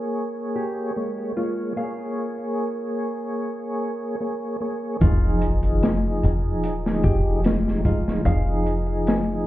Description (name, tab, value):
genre	trip hop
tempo	74 BPM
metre	4/4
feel	straight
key	F minor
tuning	A4 = 439 Hz
part	mellow tonewheel organ	accompaniment	0.0-9.5 s	F3 to Db5	-25 LUFS	equal	chorus vibrato, slow rotary speaker, tremolo, vintage 12-bit sampler grit, tape echo
part	nylon-string guitar	arpeggios	0.6-8.6 s	F4 to F5	-32 LUFS	left 1 dB	tape echo
part	deep dub fingered electric bass	bass	5.0-9.4 s	F1	-23 LUFS	equal	none
part	crunchy breakbeat drum kit	drums	5.0-9.3 s	hi-hat, kick drum, snare drum	-22 LUFS	equal	vintage 12-bit sampler grit
part	sub drop	sound effects	5.1-8.3 s	none	-27 LUFS	equal	none
room	light reverb, studio reverb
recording	heard muffled through a wall, club reverb, EQ, low-pass filter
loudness	-21 LUFS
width	side -15 dB against mid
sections	0.0-5.0 A section; 5.0-9.5 B section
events	filter sweep 0.0-5.0; impact 5.0-8.3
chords	0.0 Bbm7; 5.0 Fm7